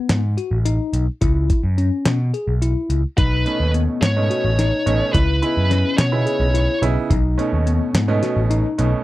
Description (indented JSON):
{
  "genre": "progressive instrumental, band music in an uneven meter",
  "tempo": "214 BPM (eighths)",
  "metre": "7/8",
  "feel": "straight",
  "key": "unclear",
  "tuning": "A4 = 440 Hz",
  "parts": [
    { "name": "bell-like tine electric piano", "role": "arpeggios", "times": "0.0-8.9 s", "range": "B3 to G#4", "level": "-24 LUFS", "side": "left 5 dB", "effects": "medium stereo tremolo" },
    { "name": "overdriven picked electric bass", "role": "bass", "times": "0.1-8.9 s", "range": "A1 to B2", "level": "-19 LUFS", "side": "equal", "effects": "none" },
    { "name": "dusty soul sampler-style drum kit", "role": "drums", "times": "0.1-8.9 s", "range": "hi-hat, kick drum, snare drum", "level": "-20 LUFS", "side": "equal", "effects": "none" },
    { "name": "high-gain lead guitar", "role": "melody", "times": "3.2-6.8 s", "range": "B4 to C#5", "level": "-22 LUFS", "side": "equal", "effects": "distortion, slapback echo" },
    { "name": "bright grand piano", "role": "accompaniment", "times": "3.5-9.0 s", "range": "B2 to E4", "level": "-24 LUFS", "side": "right 5 dB", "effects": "none" }
  ],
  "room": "little or no reverb",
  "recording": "dry, close 1970s-style studio recording",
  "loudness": "-16 LUFS",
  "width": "side -16 dB against mid",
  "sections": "0.0-9.0 A section",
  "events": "none",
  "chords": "0.0 B7; 1.2 C#m7; 3.2 B9; 5.1 C#m9; 7.1 B9"
}